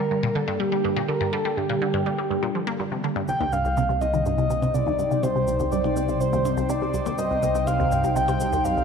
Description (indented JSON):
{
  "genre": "ambient, sequencer-driven space music",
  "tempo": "123 BPM",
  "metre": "4/4",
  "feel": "straight",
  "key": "G minor, C minor from 3.3 s",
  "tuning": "A4 = 440 Hz",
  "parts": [
    { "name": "breathy flute-like synth lead", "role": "melody", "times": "0.0-8.8 s", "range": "G4 to G5", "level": "-25 LUFS", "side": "equal", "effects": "chorus, ping-pong delay" },
    { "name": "phased analog pad", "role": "sustained chords", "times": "0.0-8.8 s", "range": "C3 to G5", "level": "-28 LUFS", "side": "equal", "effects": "phaser, chorus" },
    { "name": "resonant blip pluck", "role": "riff", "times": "0.0-8.8 s", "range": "C2 to Bb3", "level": "-27 LUFS", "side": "equal", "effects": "phaser, ping-pong delay" },
    { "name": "fat analog bass", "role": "bass", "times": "3.3-8.8 s", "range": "C2", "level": "-29 LUFS", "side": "equal", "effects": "tube saturation" },
    { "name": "shaker and percussion blips", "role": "percussion", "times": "3.3-8.7 s", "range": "none", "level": "-44 LUFS", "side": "equal", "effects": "ping-pong delay" }
  ],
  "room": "wet lush hall reverb, RT60 2.9 s",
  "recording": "none",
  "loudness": "-21 LUFS",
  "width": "side -6 dB against mid",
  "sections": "0.0-3.3 A section; 3.3-8.8 B section",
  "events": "fade-in on drum 3.3-8.8",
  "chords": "0.0 Gm; 3.3 Cm",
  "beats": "0.35 0.84 | 1.33 1.82 2.31 2.79 | 3.28 3.77 4.26 4.75 | 5.23 5.72 6.21 6.70 | 7.18 7.67 8.16 8.65"
}